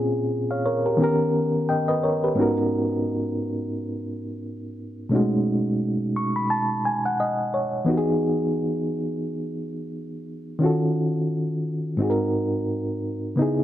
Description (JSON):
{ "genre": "soul", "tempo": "87 BPM", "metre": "4/4", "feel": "swing 58% on 16ths", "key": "unclear", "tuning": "A4 = 439 Hz", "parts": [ { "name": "reed electric piano", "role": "solo", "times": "0.0-13.6 s", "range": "G#2 to C#6", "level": "-22 LUFS", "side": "equal", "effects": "overdrive, fast tremolo" } ], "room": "light reverb, digital ambience", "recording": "none", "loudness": "-22 LUFS", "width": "side -12 dB against mid", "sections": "0.0-13.6 A section", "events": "reed electric piano fill 5.8-7.9", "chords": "0.0 A#m9; 1.0 D#7b13; 2.4 G#m11; 5.1 B13; 7.9 Emaj7; 10.6 D#m7b5; 12.0 G#7", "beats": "0.31 1.00 1.69 | 2.38 3.06 3.75 4.44 | 5.13 5.82 6.50 7.19 | 7.88 8.57 9.26 9.94 | 10.63 11.32 12.01 12.70 | 13.39" }